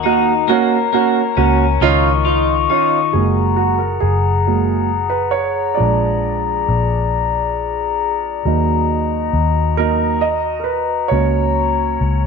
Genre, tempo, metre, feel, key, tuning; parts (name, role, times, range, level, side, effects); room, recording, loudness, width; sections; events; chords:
pop; 45 BPM (dotted quarters); 6/8; straight; F# major; A4 = 440 Hz
glass harmonica; sustained chords; 0.0-12.3 s; E#4 to C#6; -19 LUFS; left 11 dB
twelve-string electric guitar; arpeggios; 0.0-3.2 s; D#3 to F#4; -22 LUFS; left 10 dB; spring reverb
vintage muted fingered electric bass; bass; 0.0-12.3 s; F#1 to D#2; -19 LUFS; left 2 dB
dark upright piano; accompaniment; 0.1-12.3 s; E#3 to D#5; -18 LUFS; right 10 dB
wet echo chamber reverb, RT60 1.5 s, small room ambience; 1960s-style stereo with parts hard left and right, nothing above 10.4 kHz; -14 LUFS; side -5 dB against mid
0.0-3.1 A section; 3.1-12.3 B section
upright piano solo 3.1-12.3
0.5 F#/C#; 1.8 C#add9; 3.1 F#add9; 5.8 A#7; 8.5 D#m; 11.1 F#/C#